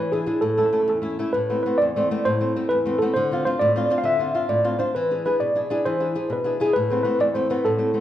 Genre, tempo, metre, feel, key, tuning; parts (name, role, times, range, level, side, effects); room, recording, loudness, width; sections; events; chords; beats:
italian folk, Italian serenade; 133 BPM (dotted quarters); 6/8; straight; A harmonic minor; A4 = 440 Hz
tine electric piano; melody; 0.0-8.0 s; E4 to F5; -21 LUFS; equal; medium tremolo
flamenco guitar; accompaniment; 0.0-8.0 s; E2 to G#4; -25 LUFS; left 1 dB
moderate recital hall reverb, RT60 1.6 s; minimal, uncompressed stereo recording; -19 LUFS; side -12 dB against mid
0.0-1.3 A section; 1.3-8.0 B section
0.4 A; 1.3 Amadd9; 3.1 Dm7; 4.9 E7; 6.8 Amadd9
| 0.42 0.88 | 1.34 1.80 | 2.25 2.70 | 3.15 3.59 | 4.04 4.49 | 4.95 5.40 | 5.86 6.31 | 6.75 7.20 | 7.64